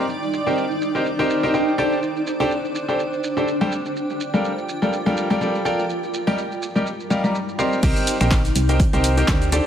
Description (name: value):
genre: piano house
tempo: 124 BPM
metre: 4/4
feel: swing 56% on 16ths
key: unclear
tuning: A4 = 440 Hz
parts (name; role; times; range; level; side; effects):
- analog string pad; sustained chords; 0.0-7.8 s; D5 to D6; -34 LUFS; right 1 dB; ensemble chorus, sidechain pumping
- clear grand piano; riff; 0.0-9.7 s; G3 to C6; -22 LUFS; equal; sidechain pumping, dub echo
- granular cloud pad; texture; 0.0-9.7 s; G3 to D6; -25 LUFS; equal; built-in reverb, sidechain pumping
- punchy analog drum machine; drums; 0.1-9.6 s; crash cymbal, finger snaps, handclaps, hi-hat, shaker; -30 LUFS; right 1 dB; overdrive, low-pass filter on perc, low-pass filter on hats, low-pass filter on cymbals, low-pass filter on snare
- solid FM bass; bass; 7.8-9.6 s; Bb1 to D2; -20 LUFS; equal; tube saturation, sidechain pumping
- electronic kick drum; drums; 7.8-9.4 s; none; -19 LUFS; equal; overdrive
- jazz brush drum kit; drums; 7.8-9.7 s; hi-hat, snare drum; -38 LUFS; right 3 dB; none
room: moderate lush hall reverb, RT60 2.0 s, small room reverb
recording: none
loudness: -18 LUFS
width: side -9 dB against mid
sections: 0.0-7.8 A section; 7.8-9.7 B section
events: drop 7.8-9.7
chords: 0.1 Cm7; 1.8 D7sus4; 3.7 Gm9; 5.9 Ebmaj7/G; 7.8 Cm7